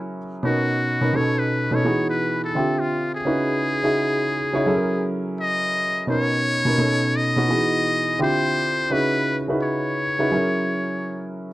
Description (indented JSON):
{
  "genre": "R&B",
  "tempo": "85 BPM",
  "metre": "4/4",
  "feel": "swing 64% on 16ths",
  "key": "C# dorian",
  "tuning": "A4 = 440 Hz",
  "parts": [
    { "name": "trumpet with metal mute", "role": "melody", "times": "0.0-11.3 s", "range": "F4 to D#5", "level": "-24 LUFS", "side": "left 1 dB", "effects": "slapback echo" },
    { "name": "warm concert grand piano", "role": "accompaniment", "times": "0.0-11.5 s", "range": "B2 to E5", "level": "-22 LUFS", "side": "right 1 dB", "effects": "none" }
  ],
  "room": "light reverb",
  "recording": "dry, close 1970s-style studio recording",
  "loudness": "-19 LUFS",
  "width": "side -16 dB against mid",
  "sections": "0.0-11.5 A section",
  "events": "none",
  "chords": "0.4 Bmaj9; 1.1 B7; 1.8 Emaj9; 2.5 Dm11; 3.3 C#m11; 4.7 F#9; 6.1 Bmaj9; 6.8 B7; 7.5 Emaj9; 8.2 Dm11; 8.9 C#m11; 10.3 F#9"
}